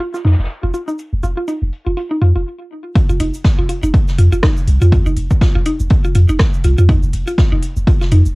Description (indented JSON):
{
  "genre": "minimal techno",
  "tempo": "122 BPM",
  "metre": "4/4",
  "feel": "swing 57% on 16ths",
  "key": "unclear",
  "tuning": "A4 = 440 Hz",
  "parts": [
    { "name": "mallet-like synth pluck", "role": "riff", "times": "0.0-8.2 s", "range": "Eb4 to F4", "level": "-22 LUFS", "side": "equal", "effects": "chorus, sidechain pumping, analog delay" },
    { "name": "swinging big-band drum kit", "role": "drums", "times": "0.0-8.3 s", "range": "hi-hat, snare drum", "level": "-34 LUFS", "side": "left 1 dB", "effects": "high-pass filter on hats, low-pass filter on hats, cassette tape, high-pass filter on snare, low-pass filter on snare, high-pass filter on room, low-pass filter on room" },
    { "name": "minimal click drum kit", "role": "drums", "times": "0.1-8.3 s", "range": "cabasa, hi-hat, rim click", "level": "-25 LUFS", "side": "equal", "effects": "overdrive, cassette tape" },
    { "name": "punchy sub bass", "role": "bass", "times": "0.2-8.3 s", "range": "F1 to F2", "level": "-13 LUFS", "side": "equal", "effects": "sidechain pumping" },
    { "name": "electronic kick drum", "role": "drums", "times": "3.0-8.0 s", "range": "none", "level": "-14 LUFS", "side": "equal", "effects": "overdrive, cassette tape" }
  ],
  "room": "little or no reverb",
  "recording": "home recording on cassette",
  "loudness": "-12 LUFS",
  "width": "side -25 dB against mid",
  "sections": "0.0-3.0 A section; 3.0-8.3 B section",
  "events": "stop 2.5-3.0; drop 3.0-8.3",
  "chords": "none",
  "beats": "0.00 0.50 | 0.99 1.48 1.97 2.46 | 2.96 3.45 3.94 4.43 | 4.92 5.41 5.91 6.40 | 6.89 7.38 7.87"
}